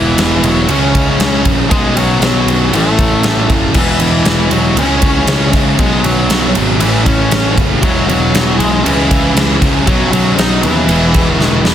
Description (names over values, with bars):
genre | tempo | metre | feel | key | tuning
quiet-loud alternative rock | 118 BPM | 4/4 | straight | E major | A4 = 440 Hz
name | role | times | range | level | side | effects
octave-fuzz lead guitar | melody | 0.0-11.6 s | E3 to D#5 | -16 LUFS | left 2 dB | distortion
thick fuzz guitar | riff | 0.0-11.7 s | A2 to E4 | -14 LUFS | equal | distortion
fuzz picked electric bass | bass | 0.0-11.7 s | E1 to D#2 | -16 LUFS | equal | overdrive
huge arena drum kit | drums | 0.2-11.7 s | crash cymbal, kick drum, ride cymbal, snare drum | -15 LUFS | equal | none
room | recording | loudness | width
light reverb, studio reverb | dense, heavily limited modern master | -9 LUFS | side -10 dB against mid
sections
0.0-11.7 A section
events
drum fill 11.4-11.7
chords
0.0 Eadd9; 0.7 C#m; 1.7 Bsus2; 2.7 A; 3.8 Eadd9; 4.8 C#m; 5.8 Bsus2; 6.8 A; 7.8 Eadd9; 8.9 C#m; 9.9 Bsus2; 10.9 E